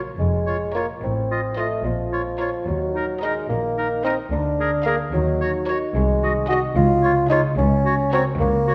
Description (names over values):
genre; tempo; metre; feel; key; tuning
cinematic, playful, whimsical film cue; 73 BPM (dotted quarters); 6/8; straight; unclear; A4 = 439 Hz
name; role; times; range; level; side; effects
clear studio violin section; melody; 0.0-8.3 s; Db5 to F5; -37 LUFS; equal; none
rich studio violin section; second line; 0.0-8.3 s; Ab4 to C5; -41 LUFS; equal; none
bright studio viola section; accompaniment; 0.0-8.3 s; Eb4 to Ab4; -38 LUFS; equal; none
mellow bassoon; accompaniment; 0.0-8.7 s; F3 to Gb4; -25 LUFS; equal; none
concert harp; arpeggios; 0.0-8.7 s; A2 to Eb5; -30 LUFS; equal; none
clear studio cello section; bass; 0.0-8.7 s; C2 to Bb2; -30 LUFS; equal; none
rich studio double bass section; bass; 0.0-8.7 s; F1 to Eb2; -29 LUFS; equal; none
clear clarinet; second line; 0.5-8.7 s; Eb4 to Ab4; -32 LUFS; equal; none
clear oboe; second line; 0.5-8.7 s; Bb4 to Eb5; -32 LUFS; equal; none
room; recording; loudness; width
wet scoring stage reverb, RT60 1.9 s; none; -21 LUFS; mono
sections
0.0-8.7 A section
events
none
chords
0.0 Bbm; 1.0 F7/A; 1.9 Bbm; 2.7 Ebm; 4.3 Bb7/D; 5.1 Ebm7; 6.0 Ab7/C; 6.8 Db; 7.6 Gb/Db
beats
0.19 | 1.03 1.85 | 2.68 3.50 | 4.32 5.13 | 5.95 6.76 | 7.58 8.40